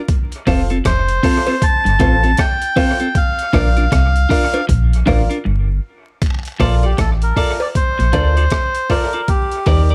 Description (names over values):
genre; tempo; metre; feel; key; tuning
roots reggae; 78 BPM; 4/4; swing 62% on 16ths; Bb major; A4 = 441 Hz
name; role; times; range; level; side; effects
breakbeat sampler-style drum kit; drums; 0.1-9.9 s; hi-hat, kick drum, rim click; -21 LUFS; equal; overdrive, dub echo
clean electric guitar; accompaniment; 0.5-9.9 s; C4 to D5; -24 LUFS; equal; dub echo
electric guitar at the edge of break-up; riff; 0.5-9.9 s; F2 to Eb3; -25 LUFS; equal; none
warm upright piano; stabs; 0.5-9.9 s; Eb4 to F5; -26 LUFS; equal; none
soft dub sub bass; bass; 0.5-9.9 s; F1 to Eb2; -18 LUFS; equal; none
cowbell and jawbone-type rattle; percussion; 0.5-9.9 s; none; -28 LUFS; equal; none
melodica; melody; 0.9-9.9 s; F4 to A5; -21 LUFS; equal; dub echo
room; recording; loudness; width
light reverb; vinyl crackle; -16 LUFS; mono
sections
0.0-6.2 A section; 6.2-9.9 B section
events
break 5.4-6.2; melodica solo 6.2-9.9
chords
0.1 F; 3.1 Bb; 6.2 Bbmaj7; 9.3 Ebmaj7